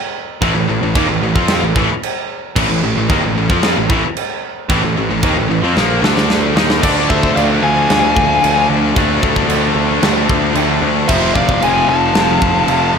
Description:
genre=heavy metal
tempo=112 BPM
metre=4/4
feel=straight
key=unclear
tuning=A4 = 440 Hz
part: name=distorted electric guitar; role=riff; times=0.4-13.0 s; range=F2 to F4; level=-21 LUFS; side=equal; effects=distortion
part: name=heavy high-gain guitar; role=riff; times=0.4-13.0 s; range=F2 to F4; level=-19 LUFS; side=left 14 dB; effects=distortion
part: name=scooped high-gain guitar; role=riff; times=0.4-13.0 s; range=F2 to F4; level=-21 LUFS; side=right 12 dB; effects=distortion
part: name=fuzz picked electric bass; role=bass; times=0.4-13.0 s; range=F1 to F2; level=-19 LUFS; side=equal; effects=overdrive
part: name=tight metal drum kit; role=drums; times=0.4-12.8 s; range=china cymbal, crash cymbal, kick drum, snare drum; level=-18 LUFS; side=right 1 dB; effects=none
part: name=high-gain lead guitar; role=melody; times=6.8-12.9 s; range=D5 to A5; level=-16 LUFS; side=left 3 dB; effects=distortion, ping-pong delay
part: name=high-gain lead guitar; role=second line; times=6.8-12.9 s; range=A4 to F5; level=-24 LUFS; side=right 4 dB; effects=distortion, ping-pong delay
room=light reverb, studio reverb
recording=none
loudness=-12 LUFS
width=side -6 dB against mid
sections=0.0-6.8 A section; 6.8-13.0 B section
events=drum fill 5.8-6.8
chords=0.0 Am; 6.0 D5; 6.6 D#5; 6.8 Dm; 11.1 F

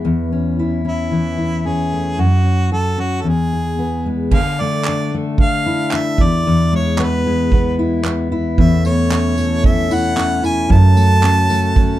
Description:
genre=acoustic pop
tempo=113 BPM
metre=4/4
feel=swing 55% on 16ths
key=A major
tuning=A4 = 440 Hz
part: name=fingerpicked steel-string acoustic guitar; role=accompaniment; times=0.0-12.0 s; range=E2 to G#4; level=-15 LUFS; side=equal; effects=none
part: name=clear harmonica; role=melody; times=0.9-12.0 s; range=E4 to A5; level=-21 LUFS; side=right 1 dB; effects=none
part: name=natural country drum kit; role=drums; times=4.3-11.9 s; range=crash cymbal, handclaps, kick drum, tambourine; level=-17 LUFS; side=right 2 dB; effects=none
part: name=tonewheel organ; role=sustained chords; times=8.6-12.0 s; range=E2 to A4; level=-26 LUFS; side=right 2 dB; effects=slow rotary speaker
room=moderate studio ambience, RT60 0.5 s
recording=dark, warm production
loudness=-14 LUFS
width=side -14 dB against mid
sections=0.0-4.3 A section; 4.3-12.0 B section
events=none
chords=0.0 A/E (rootless); 2.2 F#5; 3.3 E; 4.3 Dmadd9; 6.2 E; 8.6 Aadd9/E; 10.7 F#m

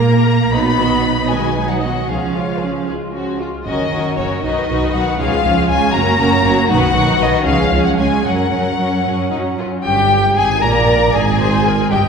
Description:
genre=quick classical-period movement for string orchestra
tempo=78 BPM (dotted quarters)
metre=6/8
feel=straight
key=F# major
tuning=A4 = 441 Hz
part: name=rich chamber violin section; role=melody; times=0.0-12.1 s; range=C#5 to B5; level=-18 LUFS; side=left 4 dB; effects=none
part: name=rich chamber violin section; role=second line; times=0.0-12.0 s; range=C#4 to D#5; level=-21 LUFS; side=left 1 dB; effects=none
part: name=rich chamber viola section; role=accompaniment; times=0.0-12.1 s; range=D#3 to Eb5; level=-20 LUFS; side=right 2 dB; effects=none
part: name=rich chamber double bass section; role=bass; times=0.0-12.0 s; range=F#1 to A#2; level=-20 LUFS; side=right 2 dB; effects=none
part: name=warm chamber cello section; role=bass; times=0.0-12.0 s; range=G2 to B3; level=-21 LUFS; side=right 3 dB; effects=none
room=wet concert hall reverb, RT60 2.0 s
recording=heard from further back in the room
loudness=-13 LUFS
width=side -6 dB against mid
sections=0.0-9.9 A section; 9.9-12.1 B section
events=none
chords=0.0 N.C.; 0.5 B; 2.1 C#; 3.7 F#; 4.4 B; 5.2 C#; 5.9 F#; 6.7 B; 7.5 C#; 8.3 F#; 9.9 N.C.; 10.6 Bb7; 11.4 Eb

